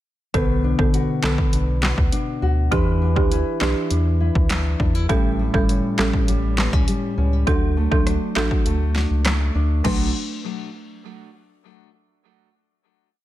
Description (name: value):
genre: dancehall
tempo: 101 BPM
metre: 4/4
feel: straight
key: B minor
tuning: A4 = 444 Hz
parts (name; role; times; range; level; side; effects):
- folk marimba with medium mallets; accompaniment; 0.3-10.1 s; D3 to B4; -24 LUFS; right 1 dB; none
- nylon-string guitar; arpeggios; 0.3-10.1 s; A2 to B4; -26 LUFS; left 2 dB; ping-pong delay
- round analog bass; bass; 0.3-10.1 s; G1 to E2; -21 LUFS; equal; none
- deep house drum kit; drums; 0.3-10.0 s; crash cymbal, handclaps, hi-hat, kick drum, rim click, snare drum; -22 LUFS; equal; overdrive
room: little or no reverb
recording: dense, heavily limited modern master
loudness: -18 LUFS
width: side -14 dB against mid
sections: 0.3-9.8 chorus; 9.8-12.2 final chord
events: kick muted 8.7-9.8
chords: 0.3 Bm7; 2.7 Em7; 5.1 A7; 7.5 D; 9.8 Bm7